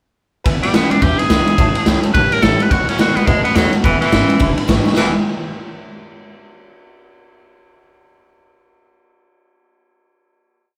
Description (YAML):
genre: rockabilly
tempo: 212 BPM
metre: 4/4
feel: swing 61% on 8ths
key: E major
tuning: A4 = 440 Hz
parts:
  - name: honky-tonk upright piano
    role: accompaniment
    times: 0.4-5.1 s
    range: B4 to C#6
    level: -31 LUFS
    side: equal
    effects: none
  - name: picked steel-string acoustic guitar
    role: accompaniment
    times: 0.5-5.1 s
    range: E2 to F#4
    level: -28 LUFS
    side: equal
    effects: none
  - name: electric guitar through a small old amp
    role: riff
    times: 0.5-5.1 s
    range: E2 to G#4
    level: -25 LUFS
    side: equal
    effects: spring reverb
  - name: upright bass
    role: bass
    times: 0.5-5.1 s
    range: E1 to B2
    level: -25 LUFS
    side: equal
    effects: none
  - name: raw garage drum kit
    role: drums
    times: 0.5-5.1 s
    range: kick drum, ride cymbal, snare drum, splash cymbal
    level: -18 LUFS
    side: equal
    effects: none
  - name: bright tenor saxophone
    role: melody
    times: 0.6-5.1 s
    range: E3 to B4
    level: -20 LUFS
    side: equal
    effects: none
room: moderate studio ambience, RT60 0.5 s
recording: band playing live in one room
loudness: -15 LUFS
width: mono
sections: 0.5-5.0 A section; 5.0-6.1 final chord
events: drum fill 4.8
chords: 0.5 E; 1.6 A; 2.7 B7; 3.8 E